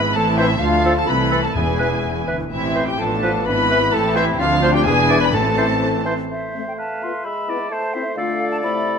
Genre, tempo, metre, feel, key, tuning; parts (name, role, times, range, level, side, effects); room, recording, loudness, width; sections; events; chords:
quick classical-period movement for symphony orchestra; 128 BPM; 2/4; rubato; A minor; A4 = 440 Hz
muted chamber violin section; melody; 0.0-6.1 s; E5 to B5; -22 LUFS; equal
clear clarinet; second line; 0.0-9.0 s; E4 to F5; -26 LUFS; left 2 dB
hollow concert flute; second line; 0.0-9.0 s; E5 to C6; -26 LUFS; left 1 dB
muted studio violin section; second line; 0.0-6.1 s; C4 to B4; -27 LUFS; left 2 dB
muted chamber viola section; accompaniment; 0.0-6.1 s; E3 to D4; -26 LUFS; right 1 dB
muted chamber cello section; bass; 0.0-6.1 s; C2 to A2; -26 LUFS; right 2 dB
muted studio double bass section; bass; 0.0-6.1 s; E1 to D2; -26 LUFS; right 4 dB
clear oboe; second line; 0.4-9.0 s; A4 to E5; -28 LUFS; right 1 dB
mellow bassoon; accompaniment; 0.4-9.0 s; C3 to A3; -27 LUFS; right 2 dB
dark French horn section; sustained chords; 0.4-9.0 s; A3 to F4; -25 LUFS; left 4 dB
timpani; percussion; 1.6-2.2, 5.3-6.0 s; E2 to A2; -28 LUFS; equal
moderate scoring stage reverb, RT60 1.6 s; -16 LUFS; side -6 dB against mid
0.0-6.3 A section; 6.3-9.0 A section
0.2 Am; 0.6 Dm; 1.1 Am/C; 1.6 E; 2.5 Am; 3.0 Bm7b5/A; 3.5 E/G#; 3.9 Am; 4.4 Dm7; 4.9 E7; 5.3 Am; 6.8 Amadd9; 7.3 E/G#; 7.7 Am; 8.2 Dm